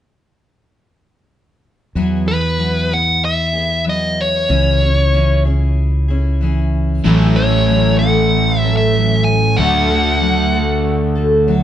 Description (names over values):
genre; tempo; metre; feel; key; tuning
rock; 94 BPM; 4/4; straight; E major; A4 = 439 Hz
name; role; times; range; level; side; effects
picked steel-string acoustic guitar; accompaniment; 2.0-11.6 s; A2 to A4; -19 LUFS; left 1 dB; none
fingered electric bass; bass; 2.0-11.6 s; A1 to E2; -17 LUFS; right 1 dB; none
dark smooth lead guitar; melody; 2.3-11.6 s; B4 to G#5; -17 LUFS; left 1 dB; overdrive
crunchy overdriven guitar; riff; 7.0-11.6 s; A2 to F#4; -17 LUFS; equal; none
room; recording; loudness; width
moderate large studio reverb, RT60 1.2 s; band playing live in one room, nothing above 10.6 kHz; -12 LUFS; side -11 dB against mid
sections
1.9-11.6 A section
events
none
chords
1.9 Eadd9; 4.5 C#m; 7.0 A6; 9.6 D